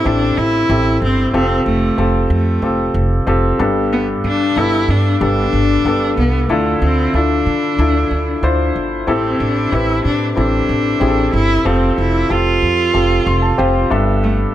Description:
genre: piano-driven pop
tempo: 93 BPM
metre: 4/4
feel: straight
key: A minor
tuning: A4 = 440 Hz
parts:
  - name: warm cello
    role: melody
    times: 0.0-14.4 s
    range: A3 to F4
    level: -18 LUFS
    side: equal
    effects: plate reverb, ping-pong delay
  - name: warm upright piano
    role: accompaniment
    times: 0.0-14.5 s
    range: G2 to C6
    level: -17 LUFS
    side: left 1 dB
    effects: plate reverb
  - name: upright bass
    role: bass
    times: 0.1-14.4 s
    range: F1 to D3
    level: -18 LUFS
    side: equal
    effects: none
room: light reverb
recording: none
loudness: -13 LUFS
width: side -12 dB against mid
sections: 0.0-14.5 A section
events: upright piano fill 12.9-14.2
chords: 0.0 Am7; 1.3 Fadd9; 3.6 Gadd9; 6.5 Dmadd9; 9.1 Am7; 11.7 Fadd9; 13.9 Gadd9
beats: 0.05 0.69 | 1.34 1.98 2.63 3.27 | 3.92 4.56 5.21 5.85 | 6.50 7.14 7.78 8.43 | 9.07 9.72 10.36 11.01 | 11.65 12.30 12.94 13.59 | 14.23

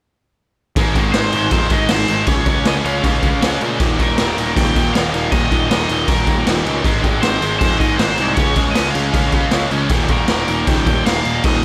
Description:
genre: punk rock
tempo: 157 BPM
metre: 4/4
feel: straight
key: unclear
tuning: A4 = 444 Hz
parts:
  - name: distorted electric guitar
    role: riff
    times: 0.8-11.6 s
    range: Eb2 to Db4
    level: -21 LUFS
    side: equal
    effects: distortion
  - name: fuzz picked electric bass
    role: bass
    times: 0.8-11.6 s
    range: Eb1 to Bb2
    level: -25 LUFS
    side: equal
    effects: overdrive
  - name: raw garage drum kit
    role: drums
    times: 0.8-11.5 s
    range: crash cymbal, kick drum, snare drum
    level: -20 LUFS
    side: equal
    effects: none
  - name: cranked stack guitar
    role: melody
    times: 1.1-11.6 s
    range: Bb4 to G5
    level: -24 LUFS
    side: equal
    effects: overdrive
room: little or no reverb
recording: none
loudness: -16 LUFS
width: mono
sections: 0.8-11.6 A section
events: none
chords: 0.8 Ab; 2.3 Db; 3.8 Eb5; 6.9 Ab; 8.4 Db; 9.9 Eb5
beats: | 0.76 1.14 1.52 1.90 | 2.28 2.66 3.04 3.42 | 3.80 4.18 4.56 4.95 | 5.33 5.71 6.09 6.47 | 6.85 7.23 7.62 8.00 | 8.38 8.76 9.14 9.53 | 9.91 10.29 10.67 11.06 | 11.44

